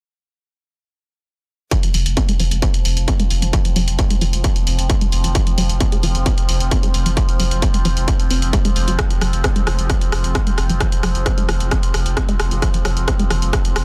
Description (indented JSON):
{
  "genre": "driving peak-time techno",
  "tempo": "132 BPM",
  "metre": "4/4",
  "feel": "straight",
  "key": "unclear",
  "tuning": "A4 = 440 Hz",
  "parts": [
    { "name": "tight sequenced synth", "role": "riff", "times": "1.7-13.6 s", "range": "F3 to C4", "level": "-28 LUFS", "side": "equal", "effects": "chorus, tube saturation, sidechain pumping, dub echo" },
    { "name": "overtone-sweeping drone", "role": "drone", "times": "2.5-13.8 s", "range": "F3 to C4", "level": "-31 LUFS", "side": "equal", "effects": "chorus, built-in reverb, sidechain pumping" },
    { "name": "electronic kick drum", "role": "drums", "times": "1.7-13.6 s", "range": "none", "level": "-20 LUFS", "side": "equal", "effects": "distortion" },
    { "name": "techno drum kit", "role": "drums", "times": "1.7-13.8 s", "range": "hi-hat, rim click", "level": "-26 LUFS", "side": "equal", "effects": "none" },
    { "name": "saturated sub bass", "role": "bass", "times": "1.9-13.8 s", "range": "F1", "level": "-22 LUFS", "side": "equal", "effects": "overdrive, sidechain pumping, low-pass filter" }
  ],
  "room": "little or no reverb",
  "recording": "dense, heavily limited modern master",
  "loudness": "-18 LUFS",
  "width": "mono",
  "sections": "1.7-13.8 A section",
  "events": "filter sweep on synth arpeggio sound 1.7-13.8",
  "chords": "1.7 F5"
}